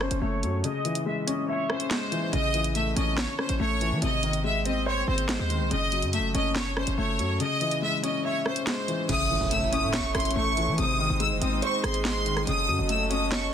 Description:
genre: hip hop, drill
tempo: 142 BPM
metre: 4/4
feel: half-time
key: C# harmonic minor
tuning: A4 = 439 Hz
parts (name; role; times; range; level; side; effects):
- clear studio violin section; melody; 0.0-13.5 s; B#4 to E6; -29 LUFS; equal; low-pass filter, digital delay
- warm baby grand piano; accompaniment; 0.0-13.5 s; B#2 to E5; -29 LUFS; left 3 dB; low-pass filter
- hard-hitting 808-style bass; bass; 0.0-13.5 s; F#1 to E3; -29 LUFS; right 1 dB; none
- drill drum kit; drums; 0.0-13.4 s; crash cymbal, hi-hat, rim click, snare drum; -32 LUFS; right 1 dB; vintage 12-bit sampler grit
- hollow clarinet-like synth lead; second line; 9.1-13.5 s; G#4 to E5; -33 LUFS; right 6 dB; chorus, digital delay
- warm chamber string section; sustained chords; 9.1-13.5 s; F#3 to C#5; -36 LUFS; right 1 dB; none
- impact; sound effects; 9.1-10.8 s; none; -36 LUFS; right 3 dB; none
room: light reverb, studio ambience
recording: dense, heavily limited modern master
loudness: -24 LUFS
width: side -8 dB against mid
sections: 0.0-9.1 A section; 9.1-13.5 B section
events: filter sweep 0.0-2.3; kick muted 0.6-2.3, 7.4-9.1; impact 9.1-10.8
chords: 0.0 F#m; 0.6 C#m; 2.3 A; 4.0 G#; 5.7 F#m; 7.4 C#m; 9.1 A; 10.8 G#; 12.5 F#m

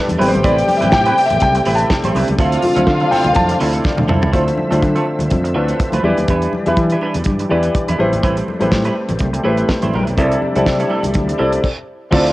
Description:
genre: disco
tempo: 123 BPM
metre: 4/4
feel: swing 56% on 16ths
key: D dorian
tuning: A4 = 445 Hz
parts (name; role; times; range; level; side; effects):
- warm concert grand piano; accompaniment; 0.0-12.3 s; C3 to A5; -18 LUFS; left 1 dB; cassette tape
- overdriven tonewheel organ; sustained chords; 0.0-12.3 s; C3 to E5; -24 LUFS; right 1 dB; chorus vibrato, slow rotary speaker, cassette tape
- clean electric guitar; accompaniment; 0.1-12.3 s; F3 to C5; -22 LUFS; right 3 dB; lush chorus, cassette tape
- fingered electric bass; bass; 0.1-12.3 s; G#1 to E3; -20 LUFS; equal; none
- damped 70s drum kit; drums; 0.1-12.3 s; crash cymbal, hi-hat, kick drum, snare drum, toms; -19 LUFS; equal; cassette tape
- congas; percussion; 0.1-11.5 s; none; -24 LUFS; left 2 dB; none
- dark studio string section; second line; 0.2-4.1, 12.1-12.3 s; D4 to G5; -19 LUFS; left 1 dB; cassette tape
room: light reverb, small room ambience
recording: home recording on cassette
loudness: -13 LUFS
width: side -17 dB against mid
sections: 0.0-4.3 A section; 4.3-12.1 B section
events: grand piano solo 0.0-4.3; drum fill 3.8-4.3; stop 11.6-12.1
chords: 0.2 Am9; 2.4 Dm9; 4.3 Dm7; 6.0 Em7; 8.0 Am9; 10.2 C69

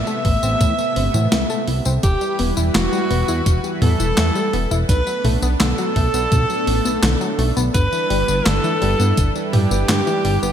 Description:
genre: synthwave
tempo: 84 BPM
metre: 4/4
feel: straight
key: E minor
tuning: A4 = 441 Hz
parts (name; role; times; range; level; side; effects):
- bright alto saxophone; melody; 0.0-10.5 s; F#4 to E5; -23 LUFS; right 1 dB; digital delay
- string machine, violins; second line; 0.0-10.5 s; F#4 to E5; -28 LUFS; right 1 dB; ensemble chorus, digital delay
- chorused pulse-width pad; sustained chords; 0.0-10.5 s; C3 to B4; -26 LUFS; right 1 dB; sidechain pumping
- chorused synth bass; bass; 0.0-10.5 s; E1 to A2; -20 LUFS; equal; none
- warbly dusty pluck; arpeggios; 0.1-10.5 s; D3 to A4; -26 LUFS; left 4 dB; chorus, cassette tape, digital delay
- clean 12-bit digital drum machine; drums; 0.1-10.5 s; handclaps, hi-hat, snare drum, tambourine, toms; -23 LUFS; equal; gated reverb
- electronic kick drum; drums; 0.2-9.3 s; none; -18 LUFS; equal; none
room: light reverb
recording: bright 1980s-style digital production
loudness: -16 LUFS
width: side -9 dB against mid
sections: 0.0-10.5 A section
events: none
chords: 0.0 Amadd9; 2.0 Em; 4.9 Bm7; 7.7 G6

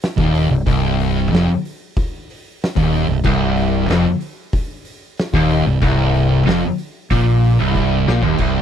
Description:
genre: stoner and doom metal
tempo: 93 BPM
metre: 4/4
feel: straight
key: C minor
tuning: A4 = 440 Hz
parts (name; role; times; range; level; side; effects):
- oversized low-tuned drum kit; drums; 0.0-8.5 s; crash cymbal, hi-hat, kick drum, snare drum, toms; -22 LUFS; equal; none
- thick fuzz guitar; riff; 0.2-8.6 s; C2 to Bb2; -20 LUFS; left 11 dB; distortion
- thick fuzz guitar; riff; 0.2-8.6 s; C2 to Bb2; -18 LUFS; right 6 dB; distortion
- growling fingered electric bass; bass; 0.2-8.6 s; C1 to Bb1; -21 LUFS; equal; overdrive
- overdriven electric guitar; riff; 3.3-8.6 s; C2 to Bb2; -19 LUFS; left 1 dB; none
room: little or no reverb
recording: dry, close 1970s-style studio recording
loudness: -14 LUFS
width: side -9 dB against mid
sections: 0.0-8.4 A section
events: drum fill 7.8-8.4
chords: 0.0 Cm

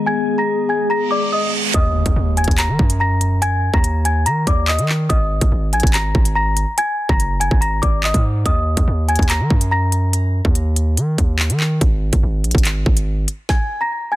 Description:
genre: hip hop, drill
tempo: 143 BPM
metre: 4/4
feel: half-time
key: Eb harmonic minor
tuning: A4 = 440 Hz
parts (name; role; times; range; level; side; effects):
- small celesta; melody; 0.0-10.1, 13.5-14.2 s; D5 to Bb6; -21 LUFS; left 1 dB; low-pass filter
- mellow tine electric piano; accompaniment; 0.0-1.8 s; Ab3 to Eb5; -28 LUFS; right 1 dB; medium stereo tremolo, low-pass filter
- glassy FM pad; sustained chords; 0.0-1.7 s; Eb3 to Ab4; -26 LUFS; left 3 dB; ensemble chorus, built-in reverb, phaser, low-pass filter
- hollow clarinet-like synth lead; second line; 0.1-1.7 s; Ab4; -21 LUFS; left 3 dB; chorus, tape echo
- reverse cymbal and impact; sound effects; 1.1-3.4 s; none; -25 LUFS; right 2 dB; none
- distorted 808-style bass; bass; 1.7-13.3 s; Gb1 to Eb3; -18 LUFS; equal; distortion
- drill drum kit; drums; 1.7-13.6 s; handclaps, hi-hat, kick drum, snare drum; -17 LUFS; equal; none
room: little or no reverb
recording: dense, heavily limited modern master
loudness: -15 LUFS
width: side -16 dB against mid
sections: 0.0-1.7 A section; 1.7-14.2 B section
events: filter sweep 0.0-1.7; reverse cymbal 1.1-1.7; impact 1.7-3.4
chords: 0.0 Abm; 1.7 Ebm; 5.1 Ab5; 8.5 Ebm; 11.8 Ab5

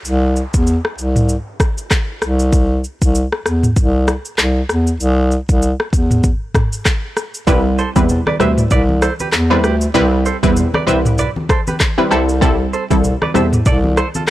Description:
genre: afrobeats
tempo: 97 BPM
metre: 4/4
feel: swing 58% on 16ths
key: C major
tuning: A4 = 439 Hz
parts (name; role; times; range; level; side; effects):
- downlifter; sound effects; 0.0-2.5 s; none; -39 LUFS; equal; none
- dark bass clarinet; bass; 0.1-14.3 s; C2 to E2; -15 LUFS; equal; none
- afro-pop drum kit; drums; 0.1-14.3 s; handclaps, kick drum, rim click, shaker, toms; -16 LUFS; equal; none
- analog pluck; accompaniment; 7.5-13.6 s; G3 to B4; -17 LUFS; right 1 dB; chorus
- direct-recorded clean electric guitar; riff; 7.5-14.2 s; E4 to E5; -22 LUFS; right 5 dB; lush chorus, tape echo
- congas; percussion; 7.5-14.3 s; none; -24 LUFS; left 1 dB; none
room: little or no reverb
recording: dry, gritty hardware recording, cassette tape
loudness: -13 LUFS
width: side -15 dB against mid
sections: 0.0-14.3 A section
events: none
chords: 0.0 C; 7.5 Cmaj7; 12.1 Am7/C

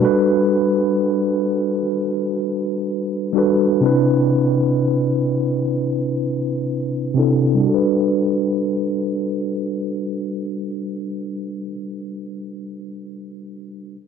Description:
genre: R&B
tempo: 63 BPM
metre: 4/4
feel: straight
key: G major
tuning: A4 = 443 Hz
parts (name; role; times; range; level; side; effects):
- mellow tine electric piano; solo; 0.0-14.0 s; C3 to B4; -18 LUFS; equal; medium stereo tremolo, low-pass filter
room: light reverb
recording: dry, gritty hardware recording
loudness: -17 LUFS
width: side -7 dB against mid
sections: 0.0-7.6 A section; 7.6-11.4 B section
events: filter sweep on tine electric piano 0.0-7.6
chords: 0.0 Gmaj9; 3.8 Cmaj7; 7.6 Gmaj9

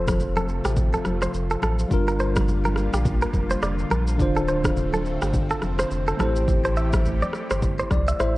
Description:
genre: afrobeats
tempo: 105 BPM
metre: 4/4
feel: swing 58% on 16ths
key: G dorian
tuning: A4 = 442 Hz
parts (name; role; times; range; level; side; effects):
- tine electric piano; accompaniment; 0.0-8.4 s; D3 to E5; -27 LUFS; left 1 dB; medium stereo tremolo
- lush unison pad; sustained chords; 0.0-8.4 s; C3 to G4; -33 LUFS; equal; chorus, phaser
- direct-recorded clean electric guitar; riff; 0.0-8.3 s; G4 to E5; -28 LUFS; right 2 dB; spring reverb, tape echo
- warm sub bass; bass; 0.0-8.4 s; D1 to C2; -25 LUFS; equal; none
- deep house drum kit; drums; 0.1-8.4 s; kick drum, rim click, shaker; -26 LUFS; equal; vintage 12-bit sampler grit
- congas; percussion; 0.1-8.1 s; none; -32 LUFS; left 1 dB; none
room: light reverb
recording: worn, warbling old tape, cassette tape, warbly pitch drift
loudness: -20 LUFS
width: side -18 dB against mid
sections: 0.0-8.4 A section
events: tine electric piano fill 7.6-8.4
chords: 0.0 F; 1.9 Gm7; 4.2 Dm7; 6.2 Am7

